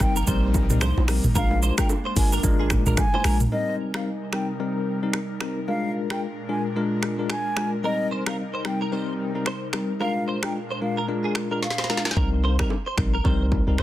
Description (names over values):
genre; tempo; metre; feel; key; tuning
afrobeats; 111 BPM; 4/4; swing 58% on 16ths; C minor; A4 = 441 Hz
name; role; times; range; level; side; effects
mellow hollow silver concert flute; melody; 0.0-12.0 s; Eb5 to Ab5; -31 LUFS; equal; tape echo
bell-like tine electric piano; accompaniment; 0.0-13.8 s; G3 to Bb4; -27 LUFS; left 3 dB; fast stereo tremolo
airy breathy pad; sustained chords; 0.0-12.1 s; Bb2 to Bb4; -32 LUFS; left 1 dB; chorus
punchy sub bass; bass; 0.0-3.5, 12.2-13.8 s; G1 to C2; -23 LUFS; equal; none
afro-pop drum kit; drums; 0.0-13.8 s; finger snaps, hi-hat, kick drum, rim click, shaker, snare drum, toms; -25 LUFS; equal; soft clipping on snare
direct-recorded clean electric guitar; riff; 0.2-3.4, 7.8-13.8 s; Ab4 to C5; -32 LUFS; right 4 dB; ensemble chorus, tape echo
congas and bongos; percussion; 0.3-3.2, 12.2-13.8 s; none; -34 LUFS; right 5 dB; none
room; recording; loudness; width
light reverb; dense, heavily limited modern master; -22 LUFS; side -14 dB against mid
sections
0.0-3.5 A section; 3.5-12.2 B section; 12.2-13.8 C section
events
drum fill 11.6-12.2; hi-hats muted 12.2-13.8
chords
0.0 Cm7; 1.4 Bb7; 3.5 Cm7; 5.7 Bb7; 7.8 Cm7; 10.0 Bb7; 12.2 Cm7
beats
0.27 0.81 | 1.35 1.90 2.44 2.98 | 3.52 4.06 4.60 5.14 | 5.68 6.22 6.76 7.30 | 7.84 8.38 8.92 9.46 | 10.00 10.54 11.08 11.62 | 12.16 12.71 13.25 13.79